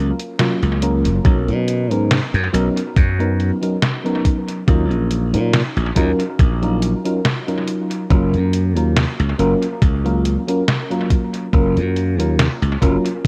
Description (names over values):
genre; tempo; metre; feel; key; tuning
vaporwave; 70 BPM; 4/4; swing 54% on 16ths; F# major; A4 = 440 Hz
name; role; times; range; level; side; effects
mellow FM electric piano; accompaniment; 0.0-13.1 s; F#3 to A#4; -23 LUFS; equal; subtle chorus, dub echo
slap bass; bass; 0.0-13.0 s; F#1 to B2; -20 LUFS; equal; none
detuned 8-bit digital drum machine; drums; 0.2-13.2 s; hi-hat, snare drum; -24 LUFS; equal; small room ambience, dub echo
electronic kick drum; drums; 1.2-13.3 s; none; -17 LUFS; equal; overdrive, small room ambience
room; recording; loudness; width
light reverb, digital ambience; echo-heavy mix, cassette tape; -18 LUFS; mono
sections
0.0-13.3 A section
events
none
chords
0.0 F#maj7; 1.2 Bmaj9; 4.7 D#m9; 8.1 F#maj7